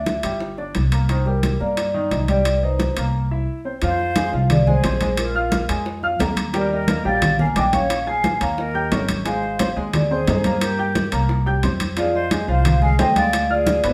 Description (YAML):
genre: Afro-Cuban jazz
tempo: 176 BPM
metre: 4/4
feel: straight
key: C minor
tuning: A4 = 440 Hz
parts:
  - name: vibraphone with soft mallets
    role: melody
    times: 0.0-13.9 s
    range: Bb4 to Ab5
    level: -25 LUFS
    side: equal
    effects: none
  - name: clear baby grand piano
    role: accompaniment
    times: 0.0-13.9 s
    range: Eb3 to Ab6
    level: -28 LUFS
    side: equal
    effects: none
  - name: upright bass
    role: bass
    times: 0.0-13.9 s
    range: G1 to G2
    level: -25 LUFS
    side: equal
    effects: none
  - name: bongos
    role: percussion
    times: 0.1-13.9 s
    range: none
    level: -34 LUFS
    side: equal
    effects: none
  - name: congas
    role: percussion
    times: 0.1-13.9 s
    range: none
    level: -26 LUFS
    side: equal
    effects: none
  - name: timbales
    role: percussion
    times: 0.1-13.9 s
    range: none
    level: -31 LUFS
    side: equal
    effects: none
  - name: bright silver concert flute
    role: second line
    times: 3.8-13.9 s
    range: F4 to F5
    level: -30 LUFS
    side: equal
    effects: none
room: wet studio reverb, RT60 0.8 s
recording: band playing live in one room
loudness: -20 LUFS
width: mono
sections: 0.0-3.8 A section; 3.8-13.9 B section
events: break 3.1-3.8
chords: 0.4 G5; 1.1 Cm9; 3.1 C7; 3.8 Fm; 5.2 Bb5; 6.5 Ebmaj9; 7.9 Bbm7; 8.6 Eb7; 9.3 Ab6; 10.6 Gmadd11; 11.3 C5; 12.0 Fm7; 13.3 Ddim